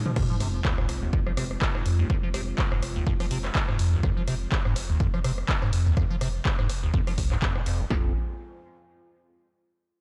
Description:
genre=acid house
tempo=124 BPM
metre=4/4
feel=swing 56% on 16ths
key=F minor pentatonic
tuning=A4 = 436 Hz
part: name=dark analog pad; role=sustained chords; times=0.0-8.1 s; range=Ab3 to Ab5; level=-43 LUFS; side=equal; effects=chorus, sidechain pumping
part: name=liquid acid bass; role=riff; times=0.1-8.1 s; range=F1 to F3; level=-32 LUFS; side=equal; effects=phaser, tube saturation, subtle chorus, sidechain pumping, tape echo
part: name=punchy analog drum machine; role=drums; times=0.1-7.8 s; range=crash cymbal, handclaps, hi-hat, rim click, toms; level=-35 LUFS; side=equal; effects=none
part: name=punchy analog drum machine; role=drums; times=0.2-8.0 s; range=kick drum, snare drum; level=-30 LUFS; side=equal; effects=none
part: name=sub drop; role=sound effects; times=0.2-2.1 s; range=none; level=-35 LUFS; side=equal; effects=none
part: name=saturated sub bass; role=bass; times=0.4-8.1 s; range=F1 to F2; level=-30 LUFS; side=equal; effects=tube saturation, sidechain pumping
room=little or no reverb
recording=dry, gritty hardware recording, cassette tape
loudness=-26 LUFS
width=mono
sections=0.2-7.9 A section; 7.9-9.8 B section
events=break 0.0; drum fill 0.0; impact 0.2-2.1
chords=0.2 Fm

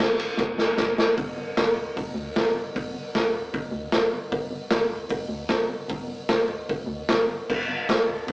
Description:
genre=garage rock duo or trio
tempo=152 BPM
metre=4/4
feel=straight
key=unclear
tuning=A4 = 438 Hz
part: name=organ-like FM bass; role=bass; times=0.0-8.3 s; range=D1 to D2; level=-36 LUFS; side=equal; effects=overdrive
part: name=raw garage drum kit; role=drums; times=0.0-8.3 s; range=crash cymbal, hi-hat, kick drum, ride cymbal, snare drum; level=-23 LUFS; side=equal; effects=none
room=moderate small room reverb, RT60 0.5 s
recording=rough rehearsal-room recording, tube saturation, cassette tape, small speaker sound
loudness=-23 LUFS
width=side -25 dB against mid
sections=0.0-1.2 A section; 1.2-8.3 B section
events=drum fill 0.4-1.2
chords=none

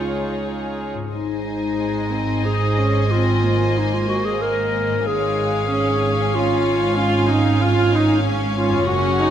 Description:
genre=cinematic, emotional film score for orchestra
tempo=93 BPM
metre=3/4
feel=rubato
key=Db major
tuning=A4 = 440 Hz
part: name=dark studio violin section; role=melody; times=0.0-9.3 s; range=Db5 to Ab5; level=-32 LUFS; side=left 5 dB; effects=none
part: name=rich studio violin section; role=second line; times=0.0-9.3 s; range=Ab4 to Gb5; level=-27 LUFS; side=left 4 dB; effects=none
part: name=rich studio viola section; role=accompaniment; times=0.0-9.3 s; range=Ab3 to F4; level=-23 LUFS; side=right 2 dB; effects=none
part: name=concert harp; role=arpeggios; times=0.0-9.3 s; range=Gb2 to Ab4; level=-32 LUFS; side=left 8 dB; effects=none
part: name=warm studio cello section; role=bass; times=0.0-9.3 s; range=Db2 to Ab2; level=-24 LUFS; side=right 2 dB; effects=none
part: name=dark clarinet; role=second line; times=1.1-9.3 s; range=Db4 to Bb4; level=-22 LUFS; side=equal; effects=none
part: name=warm chamber double bass section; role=bass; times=1.1-9.3 s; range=Gb1 to Ab1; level=-25 LUFS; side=right 3 dB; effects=none
room=moderate scoring stage reverb, RT60 1.7 s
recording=none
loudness=-17 LUFS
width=side -10 dB against mid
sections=0.0-1.1 A section; 1.1-9.3 A section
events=none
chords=0.0 Dbadd9; 1.1 Ab; 5.1 Db/Ab

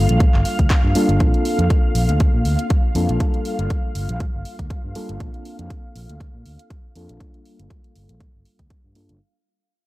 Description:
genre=filtered disco house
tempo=120 BPM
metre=4/4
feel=swing 55% on 16ths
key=unclear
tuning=A4 = 440 Hz
part: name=mellow reed electric piano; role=accompaniment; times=0.0-9.2 s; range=G3 to A4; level=-24 LUFS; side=left 1 dB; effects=fast tremolo, phaser, vintage 12-bit sampler grit, sidechain pumping, low-pass filter
part: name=string machine, full ensemble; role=sustained chords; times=0.0-9.2 s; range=F5 to F6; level=-30 LUFS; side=equal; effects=ensemble chorus, sidechain pumping, low-pass filter
part: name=fingered electric bass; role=bass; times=0.0-9.2 s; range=G1 to Bb2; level=-20 LUFS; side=equal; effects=sidechain pumping, low-pass filter
part: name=house drum kit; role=drums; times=0.1-9.2 s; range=handclaps, hi-hat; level=-31 LUFS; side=right 1 dB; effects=overdrive, sidechain pumping on hats
part: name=electronic kick drum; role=drums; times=0.2-8.8 s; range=none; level=-19 LUFS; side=equal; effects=overdrive
room=digital ambience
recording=dry, gritty hardware recording, transformer saturation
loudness=-16 LUFS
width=side -18 dB against mid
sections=0.0-9.2 A section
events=fade-out 0.0-9.2; filter sweep 0.0-9.2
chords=0.0 Gm7; 1.2 Bbmaj9; 3.2 Gm7; 5.2 Bbmaj9; 7.2 Gm7

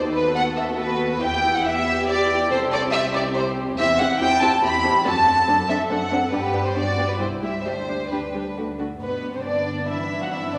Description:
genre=quick classical-period movement for string orchestra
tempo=140 BPM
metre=3/4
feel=rubato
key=G major from 3.8 s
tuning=A4 = 440 Hz
part: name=warm symphonic violin section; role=melody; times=0.0-10.6 s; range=F#4 to F#5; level=-33 LUFS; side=equal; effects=none
part: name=dark symphonic viola section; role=accompaniment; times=0.0-10.6 s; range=G3 to F#4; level=-30 LUFS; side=equal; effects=none
part: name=dark studio cello section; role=bass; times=0.0-10.6 s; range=B2 to A4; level=-32 LUFS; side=equal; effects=none
part: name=warm symphonic double bass section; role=bass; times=0.0-10.6 s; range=C2 to G2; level=-34 LUFS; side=equal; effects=none
part: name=clear studio violin section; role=second line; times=0.1-10.6 s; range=B3 to B5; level=-24 LUFS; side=equal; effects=none
room=wet concert hall reverb, RT60 1.8 s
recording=none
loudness=-22 LUFS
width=mono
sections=0.0-9.0 A section; 9.0-10.6 B section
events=none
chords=0.0 B7/D#; 1.2 Em; 2.5 C; 3.8 C/E; 5.1 D7/F#; 6.3 G; 7.2 C; 7.7 G/D; 8.6 D; 9.0 G

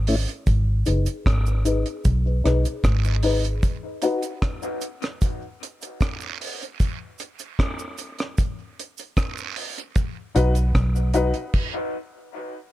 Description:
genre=dub reggae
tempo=76 BPM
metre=4/4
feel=straight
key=G# minor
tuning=A4 = 440 Hz
part: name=vintage muted fingered electric bass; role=bass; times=0.0-3.6, 10.4-11.3 s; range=F#1 to B1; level=-20 LUFS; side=equal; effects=none
part: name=deep reggae drum kit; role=drums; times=0.1-11.7 s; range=crash cymbal, hi-hat, kick drum, rim click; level=-24 LUFS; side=equal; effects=none
part: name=cabasa and guiro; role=percussion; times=0.5-11.3 s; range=none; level=-38 LUFS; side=right 11 dB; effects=high-pass filter on perc, dub echo
part: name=dark upright piano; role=stabs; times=0.9-4.2, 10.3-11.3 s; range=D#4 to B4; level=-26 LUFS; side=left 4 dB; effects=high-pass filter, low-pass filter, dub echo
room=light reverb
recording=dark, warm production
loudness=-21 LUFS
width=side -15 dB against mid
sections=0.5-12.7 A section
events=break 0.0-0.5, 3.6-10.0; filter sweep on upright piano 0.5-12.7; stop 11.5-12.7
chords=0.5 G#m; 3.6 B; 5.2 N.C.; 10.0 B; 11.5 N.C.

